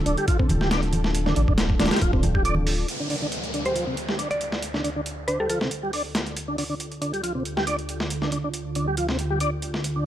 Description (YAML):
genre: breakbeat, breaks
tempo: 138 BPM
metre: 4/4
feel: swing 54% on 16ths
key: D minor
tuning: A4 = 439 Hz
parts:
  - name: phased analog pad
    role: sustained chords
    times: 0.0-10.1 s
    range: D2 to A4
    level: -31 LUFS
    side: right 1 dB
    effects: phaser, chorus, vintage 12-bit sampler grit, sidechain pumping
  - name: tonewheel organ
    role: riff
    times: 0.1-10.0 s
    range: C3 to D4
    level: -28 LUFS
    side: equal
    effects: chorus vibrato, slow rotary speaker, low-pass filter, tape echo
  - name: saturated sub bass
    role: bass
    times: 0.1-2.8 s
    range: D1 to A1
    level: -25 LUFS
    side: equal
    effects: none
  - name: dusty soul sampler-style drum kit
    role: drums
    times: 0.1-10.0 s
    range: hi-hat, kick drum, snare drum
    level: -26 LUFS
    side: equal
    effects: overdrive, high-pass filter on hats, studio reverb, high-pass filter on kick, high-pass filter on snare
  - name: congas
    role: percussion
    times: 0.5-2.6 s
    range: none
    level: -29 LUFS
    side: right 1 dB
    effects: none
  - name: downlifter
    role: sound effects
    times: 2.9-6.4 s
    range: none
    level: -34 LUFS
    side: equal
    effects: none
  - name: mallet-like synth pluck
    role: melody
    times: 3.7-5.6 s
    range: A4 to D5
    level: -29 LUFS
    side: equal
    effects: chorus, telephone sound, tape echo
room: little or no reverb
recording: vinyl crackle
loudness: -22 LUFS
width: side -12 dB against mid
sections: 0.0-2.9 A section; 2.9-10.1 B section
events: filter sweep on tonewheel organ 2.9-10.1; filter sweep on analog synth pad 2.9-10.1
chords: 0.0 Dm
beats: 0.28 0.71 | 1.15 1.58 2.02 2.45 | 2.89 3.32 3.76 4.19 | 4.63 5.06 5.50 5.93 | 6.37 6.80 7.24 7.67 | 8.11 8.54 8.97 9.41 | 9.84